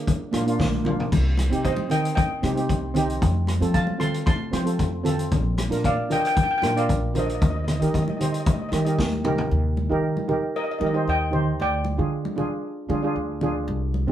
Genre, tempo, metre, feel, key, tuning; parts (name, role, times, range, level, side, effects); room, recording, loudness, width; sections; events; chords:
calypso; 114 BPM; 4/4; straight; Eb major; A4 = 440 Hz
steel pan; melody; 0.0-13.4 s; Bb4 to C6; -26 LUFS; left 1 dB
steel pan; accompaniment; 0.0-14.1 s; Bb3 to C5; -27 LUFS; right 2 dB
street-band drum kit; drums; 0.1-9.5 s; crash cymbal, hi-hat, kick drum, rim click, snare drum, toms; -25 LUFS; left 1 dB
upright bass; bass; 0.3-14.1 s; Bb1 to F3; -25 LUFS; equal
congas; percussion; 0.3-14.1 s; -29 LUFS; equal
wet studio ambience, RT60 0.5 s; band playing live in one room; -21 LUFS; side -11 dB against mid
0.0-9.5 A section; 9.5-14.1 A section
drum fill 0.6-1.1, 9.0-9.5
0.0 Bb; 1.1 Cm; 3.2 F; 5.3 Bb; 7.4 Eb; 11.6 Ddim